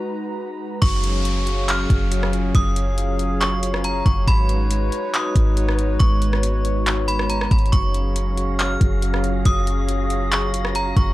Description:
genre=hip hop, atmospheric cloud-rap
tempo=139 BPM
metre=4/4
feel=half-time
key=unclear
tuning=A4 = 440 Hz
part: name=hollow soft pad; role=sustained chords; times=0.0-11.1 s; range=F#3 to A#5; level=-26 LUFS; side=left 1 dB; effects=chorus, sidechain pumping
part: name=wind-like tuned noise texture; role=texture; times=0.0-0.8, 8.1-11.1 s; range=F#4 to A#6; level=-37 LUFS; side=right 3 dB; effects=built-in reverb
part: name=metallic FM bell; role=melody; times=0.8-11.1 s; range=A#5 to E#6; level=-26 LUFS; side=right 1 dB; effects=chorus, analog delay
part: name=muted felt-like synth keys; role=arpeggios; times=0.8-11.1 s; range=F#3 to F#4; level=-33 LUFS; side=right 2 dB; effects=chorus, analog delay
part: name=clean 808-style bass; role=bass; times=0.8-11.1 s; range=F#1 to G#1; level=-20 LUFS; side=equal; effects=none
part: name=smooth R&B drum kit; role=drums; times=0.8-11.1 s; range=handclaps, hi-hat, kick drum, rim click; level=-22 LUFS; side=equal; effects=none
part: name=downlifter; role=sound effects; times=0.8-4.3 s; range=none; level=-32 LUFS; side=equal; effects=none
room=little or no reverb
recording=dry, gritty hardware recording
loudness=-18 LUFS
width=side -16 dB against mid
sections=0.8-11.1 A section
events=break 0.0-0.8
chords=0.0 G#m9; 0.8 F#5; 4.3 G#m7; 7.7 F#maj7

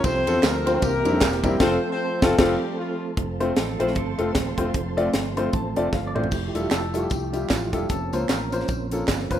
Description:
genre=uptempo gospel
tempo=152 BPM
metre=4/4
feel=swing 59% on 8ths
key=F major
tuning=A4 = 440 Hz
part: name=warm horn section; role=melody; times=0.0-3.1 s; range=F3 to C5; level=-26 LUFS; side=left 2 dB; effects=none
part: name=warm upright piano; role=accompaniment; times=0.0-9.4 s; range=C3 to C6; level=-25 LUFS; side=left 2 dB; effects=none
part: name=mellow tonewheel organ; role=sustained chords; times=0.0-9.4 s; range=E3 to C5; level=-30 LUFS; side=right 3 dB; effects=fast rotary speaker, chorus vibrato
part: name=fingered electric bass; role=bass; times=0.0-9.4 s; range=Eb1 to F2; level=-30 LUFS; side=equal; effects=none
part: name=tight funk drum kit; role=drums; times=0.0-9.4 s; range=crash cymbal, hi-hat, kick drum, ride cymbal, snare drum, toms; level=-25 LUFS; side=equal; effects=none
part: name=tambourine and handclaps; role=percussion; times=0.0-1.5, 6.3-9.4 s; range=none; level=-34 LUFS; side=right 7 dB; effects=none
part: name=warm symphonic string section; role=sustained chords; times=3.2-6.3 s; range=C5 to C6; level=-40 LUFS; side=right 1 dB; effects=none
part: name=clean electric guitar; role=second line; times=3.6-4.6 s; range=C4 to C5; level=-34 LUFS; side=right 8 dB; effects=none
part: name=clean electric guitar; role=melody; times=6.1-9.4 s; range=F4 to D5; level=-33 LUFS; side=left 3 dB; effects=spring reverb
room=light reverb, small room ambience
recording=rough home demo mix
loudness=-21 LUFS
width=side -10 dB against mid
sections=0.0-3.2 A section; 3.2-6.3 B section; 6.3-9.4 C section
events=band accent 1.6-3.2; upright piano fill 5.1-6.3; drum fill 5.9-6.3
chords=0.0 F/C; 0.8 C7; 1.6 F; 6.3 Fmaj9; 7.9 Bbmadd9/F

